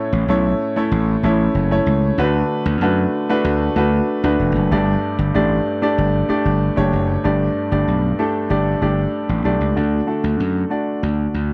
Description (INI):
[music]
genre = 1980s-style pop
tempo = 95 BPM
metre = 4/4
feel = straight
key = D major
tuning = A4 = 440 Hz
[part]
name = clear grand piano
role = accompaniment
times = 0.0-11.5 s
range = G2 to D5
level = -21 LUFS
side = equal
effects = none
[part]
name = gritty slap bass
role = bass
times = 0.1-11.5 s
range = E1 to F#2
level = -21 LUFS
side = equal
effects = overdrive
[sound]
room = studio ambience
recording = dry, close 1970s-style studio recording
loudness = -18 LUFS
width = mono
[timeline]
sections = 0.0-7.2 A section; 7.2-9.8 B section; 9.8-11.5 C section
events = none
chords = 0.0 A; 2.2 D6; 4.7 Gsus2; 9.8 D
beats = 0.29 0.92 1.55 | 2.18 2.82 3.45 4.08 | 4.71 5.34 5.97 6.61 | 7.24 7.87 8.50 9.13 | 9.76 10.39 11.03